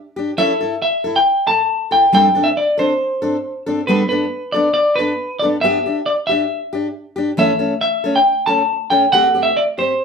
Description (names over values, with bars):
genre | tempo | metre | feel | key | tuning
highlife | 137 BPM | 4/4 | swing 54% on 16ths | unclear | A4 = 445 Hz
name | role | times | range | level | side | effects
picked steel-string acoustic guitar | accompaniment | 0.2-9.9 s | E3 to A4 | -20 LUFS | left 1 dB | none
semi-hollow electric guitar | melody | 0.4-10.0 s | B4 to A5 | -15 LUFS | left 1 dB | none
room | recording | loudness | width
wet studio reverb, RT60 0.6 s | band playing live in one room | -14 LUFS | side -6 dB against mid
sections
0.0-10.0 A section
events
none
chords
0.4 A5; 2.1 D7(no3); 3.9 Gadd9 (rootless); 5.6 Em7; 7.4 A; 9.1 Am7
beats
| 0.38 0.82 1.26 1.69 | 2.13 2.57 3.00 3.44 | 3.88 4.31 4.75 5.19 | 5.62 6.06 6.50 6.93 | 7.37 7.81 8.25 8.69 | 9.12 9.56 10.00